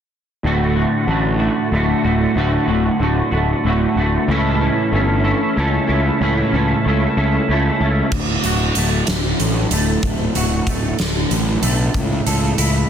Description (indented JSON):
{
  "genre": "quiet-loud alternative rock",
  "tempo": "63 BPM (dotted quarters)",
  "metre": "6/8",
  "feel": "straight",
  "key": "D major",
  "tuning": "A4 = 440 Hz",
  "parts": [
    { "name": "clean electric guitar", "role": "arpeggios", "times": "0.4-12.9 s", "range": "D2 to A4", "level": "-18 LUFS", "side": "right 1 dB", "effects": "ensemble chorus" },
    { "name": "fuzz picked electric bass", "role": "bass", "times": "0.4-12.8 s", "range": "D1 to C#2", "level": "-19 LUFS", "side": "left 1 dB", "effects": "overdrive" },
    { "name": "big rock drum kit", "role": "drums", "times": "8.1-12.7 s", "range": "crash cymbal, hi-hat, kick drum, snare drum", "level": "-20 LUFS", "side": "right 1 dB", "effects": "none" }
  ],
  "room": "light reverb, small room ambience",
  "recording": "dense, heavily limited modern master",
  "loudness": "-15 LUFS",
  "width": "side -8 dB against mid",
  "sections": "0.4-8.1 A section; 8.1-12.9 B section",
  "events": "none",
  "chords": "0.4 D; 4.3 A; 8.1 D; 11.9 A",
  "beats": "| 0.44 1.40 | 2.37 3.33 | 4.29 5.24 | 6.20 7.16 | 8.12 9.08 | 10.03 10.99 | 11.94"
}